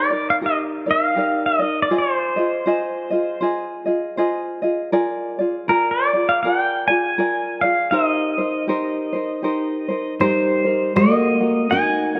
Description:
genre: Hawaiian.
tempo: 80 BPM.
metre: 4/4.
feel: swing 60% on 8ths.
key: Eb major.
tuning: A4 = 439 Hz.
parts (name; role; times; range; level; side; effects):
pedal steel guitar; melody; 0.0-12.2 s; Bb4 to Ab5; -22 LUFS; equal; none.
tenor ukulele; accompaniment; 0.0-12.2 s; Eb4 to Gb5; -24 LUFS; equal; none.
fingerpicked steel-string acoustic guitar; second line; 10.2-12.2 s; G3 to Eb4; -21 LUFS; equal; none.
room: wet echo chamber reverb, RT60 2.4 s.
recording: none.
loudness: -20 LUFS.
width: mono.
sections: 0.0-10.9 A section; 10.9-12.2 B section.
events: none.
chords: 0.0 Ebmaj7; 1.9 Fm7; 4.9 Bb7; 7.9 Eb6; 10.9 Ebm.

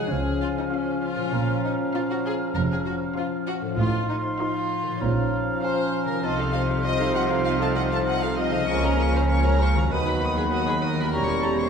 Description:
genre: cinematic, playful, whimsical film cue.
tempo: 98 BPM.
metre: 4/4.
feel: straight.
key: unclear.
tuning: A4 = 441 Hz.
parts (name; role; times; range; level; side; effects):
hollow concert flute; second line; 0.0-11.7 s; Ab5 to C#6; -33 LUFS; equal; none.
warm chamber violin section; second line; 0.0-11.7 s; Db4 to A5; -31 LUFS; left 3 dB; none.
warm clarinet; second line; 0.0-11.7 s; Db4 to E4; -34 LUFS; right 2 dB; none.
warm oboe; second line; 0.0-11.7 s; F5 to Bb5; -34 LUFS; right 2 dB; none.
mellow bassoon; accompaniment; 0.0-11.7 s; D#3 to Ab3; -32 LUFS; left 2 dB; none.
dark French horn section; sustained chords; 0.0-11.7 s; F3 to Eb4; -31 LUFS; left 1 dB; none.
concert harp; arpeggios; 0.0-11.7 s; A2 to Eb5; -32 LUFS; left 7 dB; none.
warm chamber double bass section; bass; 0.1-11.7 s; E1 to D#2; -27 LUFS; right 1 dB; none.
warm studio cello section; bass; 0.1-11.7 s; D#2 to Db3; -29 LUFS; right 3 dB; none.
warm chamber violin section; melody; 0.7-11.7 s; Eb5 to D#6; -33 LUFS; left 2 dB; none.
warm studio viola section; accompaniment; 0.7-11.7 s; D#3 to Bb4; -33 LUFS; right 2 dB; none.
room: wet scoring stage reverb, RT60 2.1 s.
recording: minimal, uncompressed stereo recording.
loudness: -22 LUFS.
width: side -6 dB against mid.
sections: 0.0-11.7 A section.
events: none.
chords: 0.1 Db; 1.3 Bbm; 3.8 F7/A; 5.0 Bbm; 6.2 F7/C; 8.7 Bbm/Db; 9.9 B/D#; 11.1 Edim7.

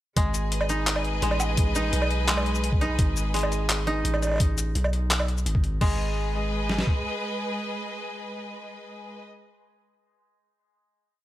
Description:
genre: half-time drum and bass.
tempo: 170 BPM.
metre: 4/4.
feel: half-time.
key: G# phrygian.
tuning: A4 = 440 Hz.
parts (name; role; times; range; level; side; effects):
bright symphonic string section; sustained chords; 0.2-9.3 s; G#3 to D#5; -32 LUFS; left 1 dB; sidechain pumping.
koto; arpeggios; 0.2-8.8 s; G#3 to D#4; -31 LUFS; right 1 dB; dub echo.
long sustained 808-style bass; bass; 0.2-6.8 s; G#1 to B1; -27 LUFS; equal; tube saturation.
boom bap sampler-style drum kit; drums; 0.2-7.0 s; kick drum, snare drum; -24 LUFS; equal; small room ambience.
boom bap sampler-style drum kit; drums; 0.2-5.9 s; crash cymbal, handclaps, hi-hat, shaker, woodblock; -28 LUFS; equal; small room ambience.
room: little or no reverb.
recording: none.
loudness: -23 LUFS.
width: side -14 dB against mid.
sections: 0.2-5.8 drop; 5.8-8.6 final chord.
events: drop 0.2-5.8.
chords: 0.2 G#m.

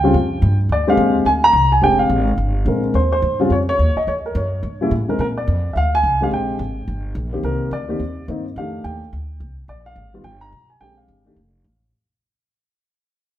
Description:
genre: jazz piano trio.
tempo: 214 BPM.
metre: 4/4.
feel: swing 61% on 8ths.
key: Bb mixolydian.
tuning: A4 = 445 Hz.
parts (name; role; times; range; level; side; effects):
dark baby grand piano; melody; 0.0-11.8 s; Db3 to Bb5; -17 LUFS; equal; none.
upright bass; bass; 0.0-11.9 s; F1 to Bb2; -20 LUFS; equal; none.
room: wet large studio reverb, RT60 1.3 s.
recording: minimal, uncompressed stereo recording.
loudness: -16 LUFS.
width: side -12 dB against mid.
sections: 0.0-11.9 A section.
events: fade-out 3.0-11.9.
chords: 0.0 Eb9 (rootless); 0.7 Bb13; 3.0 Eb13; 4.1 Edim7; 5.2 Bb13; 7.4 Cm7; 8.6 F13; 9.7 Bb5; 10.2 Gm; 10.8 Bb13; 11.4 F.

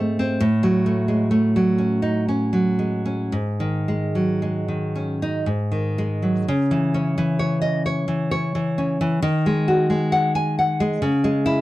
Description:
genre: romantic piece for solo classical guitar.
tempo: 54-69 BPM.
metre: 3/4.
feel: rubato.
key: C# minor.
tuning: A4 = 440 Hz.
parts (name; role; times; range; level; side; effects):
nylon-string guitar; solo; 0.0-11.6 s; G#2 to G#5; -19 LUFS; equal; none.
room: light reverb.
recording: dark, warm production.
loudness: -19 LUFS.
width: side -17 dB against mid.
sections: 0.0-6.5 A section; 6.5-11.6 B section.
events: none.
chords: 0.4 F#m/A; 3.3 G#sus4; 5.5 G#5; 6.5 C#m; 9.2 G#5/D#; 11.0 C#m.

